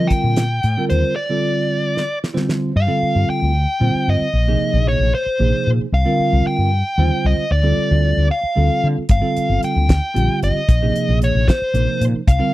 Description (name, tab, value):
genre	electric jazz fusion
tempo	76 BPM (dotted quarters)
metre	6/8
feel	straight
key	G minor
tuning	A4 = 437 Hz
part	dark smooth lead guitar	melody	0.0-12.5 s	C5 to G5	-21 LUFS	left 1 dB	overdrive, slapback echo
part	bell-like tine electric piano	accompaniment	0.0-12.5 s	C3 to C5	-21 LUFS	right 2 dB	lush chorus
part	woody fretless electric bass	bass	0.0-12.4 s	G1 to D3	-17 LUFS	equal	none
part	damped 70s drum kit	drums	0.1-2.6, 9.1-12.4 s	hi-hat, kick drum, snare drum	-16 LUFS	equal	none
room	small room ambience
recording	dry, close 1970s-style studio recording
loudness	-15 LUFS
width	side -16 dB against mid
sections	0.0-2.7 A section; 2.7-12.5 B section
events	break 1.2-2.7; drum fill 2.0-2.7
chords	0.0 Fsus4; 1.2 G9sus4; 4.3 Bb9sus4; 5.9 C9sus4; 7.5 Dm7; 9.1 G9sus4; 10.7 Bb9sus4